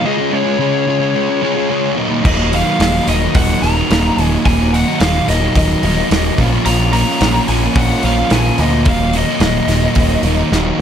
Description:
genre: quiet-loud alternative rock.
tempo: 109 BPM.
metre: 4/4.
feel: straight.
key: Eb minor.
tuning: A4 = 441 Hz.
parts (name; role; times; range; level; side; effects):
lead guitar through a small cranked amp; melody; 0.0-10.8 s; Db5 to Bb5; -19 LUFS; left 3 dB; overdrive.
fuzz guitar; riff; 0.0-10.8 s; Eb2 to Ab4; -15 LUFS; right 1 dB; distortion.
growling picked electric bass; bass; 2.2-10.7 s; Eb1 to D2; -17 LUFS; equal; overdrive.
loose indie drum kit; drums; 2.3-10.6 s; crash cymbal, hi-hat, kick drum, snare drum; -18 LUFS; equal; none.
room: light reverb.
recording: none.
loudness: -12 LUFS.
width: side -8 dB against mid.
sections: 0.0-10.8 A section.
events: drum fill 10.5.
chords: 0.1 Db; 2.0 Ebm; 6.4 Bbm; 8.9 Ebm.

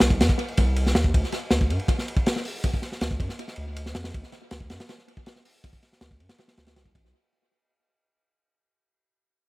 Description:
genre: drum and bass, jungle.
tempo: 160 BPM.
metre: 4/4.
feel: straight.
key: C dorian.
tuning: A4 = 437 Hz.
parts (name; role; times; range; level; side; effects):
saturated sub bass; bass; 0.0-7.1 s; A1 to G2; -26 LUFS; equal; none.
crunchy breakbeat drum kit; drums; 0.0-7.1 s; hi-hat, kick drum, ride cymbal, snare drum; -23 LUFS; equal; tape echo.
room: light reverb.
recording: echo-heavy mix.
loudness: -22 LUFS.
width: side -21 dB against mid.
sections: 0.0-7.1 A section.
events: fade-out 0.0-7.1.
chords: none.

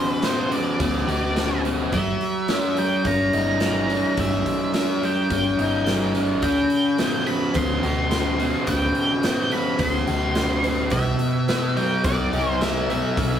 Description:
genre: rock, shoegaze and dream pop.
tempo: 107 BPM.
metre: 4/4.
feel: straight.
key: unclear.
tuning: A4 = 440 Hz.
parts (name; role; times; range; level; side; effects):
octave-fuzz lead guitar; melody; 0.0-13.4 s; C5 to C6; -27 LUFS; equal; distortion.
overdriven electric guitar; riff; 0.0-13.4 s; C3 to G4; -22 LUFS; equal; none.
big rock drum kit; drums; 0.2-13.3 s; hi-hat, kick drum, snare drum; -29 LUFS; equal; none.
hollow-body short-scale picked electric bass; bass; 0.8-13.4 s; G1 to D2; -28 LUFS; equal; none.
room: wet small room reverb, RT60 0.5 s.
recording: rough rehearsal-room recording.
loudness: -19 LUFS.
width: side -9 dB against mid.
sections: 0.0-13.4 A section.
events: none.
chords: 0.0 D7sus4; 1.9 Gm6; 6.4 D7sus4; 10.9 C.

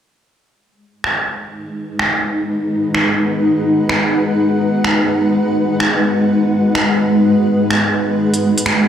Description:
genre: future garage.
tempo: 126 BPM.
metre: 4/4.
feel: swing 65% on 16ths.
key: G# minor.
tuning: A4 = 440 Hz.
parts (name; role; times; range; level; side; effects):
granular cloud pad; sustained chords; 1.6-8.9 s; G#3 to F#5; -14 LUFS; equal; built-in reverb.
garage drum kit; drums; 1.0-8.8 s; finger snaps, hi-hat; -18 LUFS; equal; low-pass filter on snare, low-pass filter on hats, low-pass filter on room.
room: wet huge ambient reverb, RT60 7.4 s.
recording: played on a big sound system in a bare room, large studio reverb.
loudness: -13 LUFS.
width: side -9 dB against mid.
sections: 0.6-8.9 A section.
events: filter sweep on drum 0.6-8.9; filter sweep on ambient pad 0.6-8.9.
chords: 0.6 G#m7; 8.2 C#m7.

